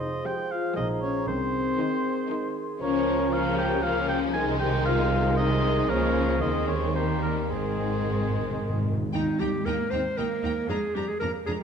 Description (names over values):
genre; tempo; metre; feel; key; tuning
quick classical-period movement for symphony orchestra; 116 BPM; 3/4; rubato; Ab major; A4 = 440 Hz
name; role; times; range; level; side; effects
mellow hollow concert flute; second line; 0.0-8.9 s; Bb5 to Db6; -38 LUFS; equal; none
warm clarinet; second line; 0.0-11.6 s; Eb4 to C5; -33 LUFS; equal; none
warm oboe; second line; 0.0-8.8 s; Ab4 to Ab5; -31 LUFS; right 1 dB; none
mellow bassoon; accompaniment; 0.0-8.9 s; Eb3 to F3; -34 LUFS; right 2 dB; none
mellow French horn section; sustained chords; 0.0-8.8 s; Ab3 to Ab4; -31 LUFS; left 5 dB; none
rich chamber double bass section; bass; 0.0-11.5 s; F1 to F2; -31 LUFS; right 3 dB; none
warm chamber cello section; bass; 0.0-11.6 s; Eb2 to C4; -34 LUFS; right 2 dB; none
rich symphonic violin section; melody; 0.3-11.5 s; Bb3 to Bb5; -34 LUFS; left 7 dB; none
rich chamber violin section; second line; 0.3-11.6 s; G3 to Bb5; -38 LUFS; left 5 dB; none
warm chamber viola section; accompaniment; 0.3-11.5 s; Eb3 to Eb4; -34 LUFS; right 1 dB; none
timpani; percussion; 7.5-9.1 s; Ab2; -31 LUFS; equal; none
room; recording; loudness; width
wet scoring stage reverb, RT60 1.7 s; none; -24 LUFS; side -7 dB against mid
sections
0.0-9.1 A section; 9.1-11.6 B section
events
timpani fill 7.5-9.1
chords
0.0 Fm; 0.8 Bbm7; 1.3 Ab/C; 2.8 Bbm/Db; 4.3 Ab/C; 5.9 Bbm7/Db; 6.4 Ab/Eb; 7.0 Eb; 7.5 Ab; 9.1 Eb; 10.7 Bb7/F